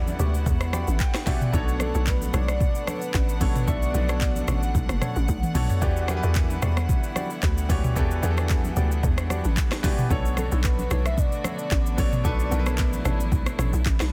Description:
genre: amapiano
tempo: 112 BPM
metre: 4/4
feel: swing 55% on 16ths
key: E dorian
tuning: A4 = 440 Hz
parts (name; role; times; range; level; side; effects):
- warm velvety synth lead; melody; 0.0-4.7, 10.4-13.9 s; A4 to E5; -36 LUFS; equal; chorus, digital delay
- bright grand piano; accompaniment; 0.0-14.1 s; B2 to B5; -36 LUFS; equal; none
- warm studio string section; sustained chords; 0.0-14.1 s; D3 to F#5; -38 LUFS; equal; sidechain pumping
- hollow log drum bass; bass; 0.0-14.1 s; F#1 to E2; -27 LUFS; equal; none
- downlifter; sound effects; 0.0-1.5 s; none; barely audible; none; none
- afro-pop drum kit; drums; 0.1-14.1 s; handclaps, hi-hat, kick drum, rim click, shaker, snare drum, toms; -27 LUFS; equal; none
- congas; percussion; 0.1-13.7 s; none; -36 LUFS; equal; none
- percussive organ stab; stabs; 0.2-13.7 s; D4 to C#6; -39 LUFS; equal; chorus, digital delay
room: digital ambience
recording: dense, heavily limited modern master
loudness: -24 LUFS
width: mono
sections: 0.0-14.1 A section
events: grand piano fill 0.5-1.5; drum fill 5.3-5.8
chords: 0.0 Em9; 1.5 Bm9; 5.8 Em9; 10.1 Bm9

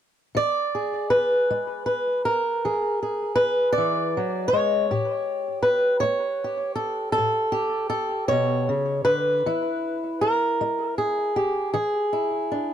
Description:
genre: acoustic country blues, solo or duo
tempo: 53 BPM (dotted quarters)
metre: 12/8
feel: straight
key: E mixolydian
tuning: A4 = 440 Hz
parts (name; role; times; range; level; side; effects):
- fingerpicked swing-style acoustic guitar; solo; 0.3-12.7 s; A2 to D5; -21 LUFS; equal; tape echo
room: light reverb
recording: close, detailed microphones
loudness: -21 LUFS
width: side -10 dB against mid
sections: 0.4-12.7 A section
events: none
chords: 0.4 E7; 4.9 A7; 9.5 E

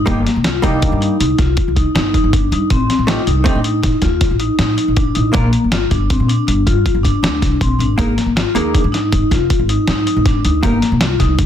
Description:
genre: progressive instrumental, band music in an uneven meter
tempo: 159 BPM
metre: 7/4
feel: straight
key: unclear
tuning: A4 = 440 Hz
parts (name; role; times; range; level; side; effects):
- vibraphone with medium mallets; arpeggios; 0.0-11.5 s; Bb3 to F4; -18 LUFS; left 2 dB; none
- upright bass; bass; 0.0-11.4 s; F1 to Bb2; -17 LUFS; equal; none
- vintage hollow-body jazz guitar; accompaniment; 0.1-10.8 s; G3 to Bb4; -20 LUFS; right 2 dB; none
- lo-fi sampler-style drum kit; drums; 0.1-11.5 s; hi-hat, kick drum, snare drum; -17 LUFS; equal; overdrive
room: light reverb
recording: dense, heavily limited modern master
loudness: -13 LUFS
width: side -9 dB against mid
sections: 0.0-11.5 A section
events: none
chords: 0.1 Eb/G; 2.7 F7/A; 5.3 Bb; 8.0 Absus2; 10.6 Eb/G

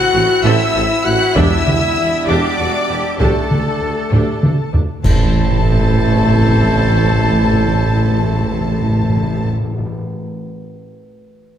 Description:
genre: cinematic, epic orchestral film score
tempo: 65 BPM (dotted quarters)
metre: 6/8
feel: straight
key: A dorian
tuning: A4 = 440 Hz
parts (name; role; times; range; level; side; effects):
- warm symphonic violin section; melody; 0.0-9.5 s; A5 to F#6; -24 LUFS; left 3 dB; none
- bright concert flute; second line; 0.0-9.5 s; A4 to A5; -24 LUFS; left 1 dB; none
- rich symphonic violin section; second line; 0.0-9.5 s; A4 to F#5; -27 LUFS; left 3 dB; none
- warm French horn section; sustained chords; 0.0-9.5 s; A3 to F#4; -23 LUFS; left 4 dB; none
- warm woodwind section; sustained chords; 0.0-9.5 s; G3 to E5; -25 LUFS; equal; none
- rich symphonic cello section; bass; 0.0-9.5 s; A2 to A4; -23 LUFS; right 1 dB; none
- rich symphonic viola section; accompaniment; 0.1-9.5 s; G3 to A4; -25 LUFS; equal; none
- mellow tuba; bass; 0.1-9.5 s; E1 to D2; -21 LUFS; right 3 dB; none
- rich symphonic double bass section; bass; 0.1-9.5 s; A1 to E2; -20 LUFS; right 3 dB; none
- solo taiko drums; drums; 1.4-5.2 s; none; -17 LUFS; equal; none
- timpani; percussion; 1.4-2.2, 5.0-9.9 s; E2 to A2; -21 LUFS; left 1 dB; none
- clash cymbals and concert bass drum; percussion; 5.0-6.2 s; none; -21 LUFS; equal; none
room: moderate scoring stage reverb, RT60 1.8 s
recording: none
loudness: -12 LUFS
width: side -10 dB against mid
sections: 0.0-5.0 A section; 5.0-8.7 B section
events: drum fill 4.1-5.0; band accent 5.0-5.7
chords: 0.0 Am; 1.4 Em7; 3.2 Dsus4; 5.0 Am

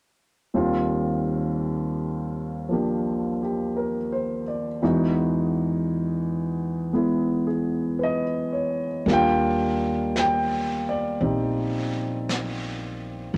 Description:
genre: jazz ballad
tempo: 56 BPM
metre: 4/4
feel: swing 66% on 8ths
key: Eb major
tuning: A4 = 444 Hz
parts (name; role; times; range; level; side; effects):
- warm concert grand piano; accompaniment; 0.5-13.4 s; Eb2 to G5; -26 LUFS; equal; none
- upright bass; bass; 9.1-13.4 s; Bb1 to Eb2; -33 LUFS; equal; none
- jazz brush drum kit; drums; 9.1-13.4 s; brushed snare drum, hi-hat, snare drum; -36 LUFS; equal; none
room: moderate studio reverb, RT60 0.5 s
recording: none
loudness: -25 LUFS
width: mono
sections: 0.5-9.1 A section; 9.1-13.4 B section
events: none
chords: 0.5 Eb69; 4.8 Emaj7; 9.1 Ebmaj9

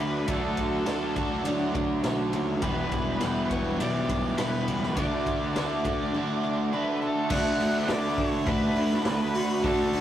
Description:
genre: rock, shoegaze and dream pop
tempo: 103 BPM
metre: 4/4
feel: straight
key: D major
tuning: A4 = 440 Hz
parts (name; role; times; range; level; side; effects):
- octave-fuzz lead guitar; melody; 0.0-10.0 s; A4 to F#5; -33 LUFS; equal; distortion
- icy glass pad; sustained chords; 0.4-10.0 s; A4 to E6; -43 LUFS; right 1 dB; none
- picked twelve-string acoustic guitar; arpeggios; 0.0-10.0 s; E3 to F#4; -33 LUFS; left 1 dB; none
- cranked stack guitar; riff; 0.0-10.0 s; E2 to D4; -32 LUFS; left 1 dB; overdrive
- overdriven electric guitar; riff; 0.0-10.0 s; E2 to G4; -30 LUFS; right 3 dB; none
- thick fuzz guitar; riff; 0.0-10.0 s; E2 to D4; -37 LUFS; left 6 dB; none
- fuzz fingered electric bass; bass; 0.0-10.0 s; E1 to Eb2; -33 LUFS; equal; overdrive
- raw garage drum kit; drums; 0.3-10.0 s; crash cymbal, hi-hat, kick drum, ride cymbal, snare drum; -33 LUFS; equal; none
room: wet studio ambience, RT60 0.5 s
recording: rough rehearsal-room recording, tube saturation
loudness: -24 LUFS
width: side -11 dB against mid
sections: 0.0-7.3 A section; 7.3-10.0 B section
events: none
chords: 0.0 D; 2.6 Em7; 5.0 D

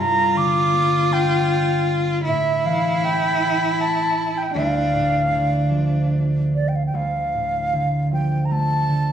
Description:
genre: celtic folk, Celtic slow air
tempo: 78 BPM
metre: 3/4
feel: rubato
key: D minor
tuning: A4 = 438 Hz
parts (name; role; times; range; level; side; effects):
- wooden flute; melody; 0.0-9.1 s; D5 to D6; -21 LUFS; right 2 dB; none
- rich cello; second line; 0.0-6.5 s; D4 to F4; -23 LUFS; left 2 dB; none
- concert harp; accompaniment; 0.0-9.1 s; D2 to G4; -22 LUFS; equal; none
room: moderate recital hall reverb, RT60 1.4 s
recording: studio reverb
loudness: -18 LUFS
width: side -9 dB against mid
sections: 0.0-6.9 A section; 6.9-9.1 B section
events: none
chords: 0.0 Gm; 2.3 A7; 4.5 Dm

